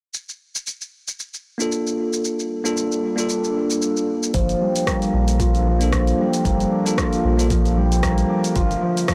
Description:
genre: organic downtempo.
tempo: 114 BPM.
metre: 4/4.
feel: swing 56% on 16ths.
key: G minor.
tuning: A4 = 441 Hz.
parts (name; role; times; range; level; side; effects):
deep house drum kit; drums; 0.1-9.1 s; hi-hat, rim click, shaker; -30 LUFS; equal; soft clipping on snare.
bell-like tine electric piano; accompaniment; 1.6-8.6 s; Bb3 to A4; -27 LUFS; equal; sidechain pumping, low-pass filter, digital delay.
warbly tape-like pad; sustained chords; 2.5-9.1 s; D3 to E5; -30 LUFS; equal; chorus, built-in reverb, sidechain pumping.
concert harp; arpeggios; 4.3-9.1 s; F3 to F4; -24 LUFS; equal; low-pass filter, digital delay.
warm sub bass; bass; 4.3-8.8 s; G1 to Bb1; -22 LUFS; equal; transformer saturation.
electronic kick drum; drums; 4.3-9.1 s; none; -27 LUFS; equal; none.
bronze singing bowl; texture; 4.3-9.1 s; C5; -32 LUFS; equal; none.
room: light reverb, digital ambience.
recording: blown-out, overdriven recording, overdrive.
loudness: -21 LUFS.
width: mono.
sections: 0.1-4.3 A section; 4.3-9.1 B section.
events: filter sweep on harp 4.3-9.1.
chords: 0.1 Gm7; 8.6 Dm7.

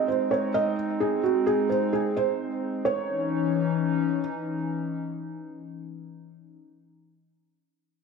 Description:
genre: hip hop.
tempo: 130 BPM.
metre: 4/4.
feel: half-time.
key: C# harmonic minor.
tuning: A4 = 440 Hz.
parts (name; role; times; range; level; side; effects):
felt-muted upright piano; melody; 0.0-4.2 s; F#4 to D#5; -25 LUFS; right 3 dB; analog chorus, diffuse ambient delay.
hollow soft pad; sustained chords; 0.0-6.6 s; E3 to D#4; -28 LUFS; left 2 dB; chorus.
room: wet plate reverb, RT60 1.6 s, digital ambience.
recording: dreamy mix soaked in reverb.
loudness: -24 LUFS.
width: side -5 dB against mid.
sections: 0.0-2.9 A section; 2.9-6.5 B section.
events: none.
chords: 0.0 G#; 2.9 C#madd9.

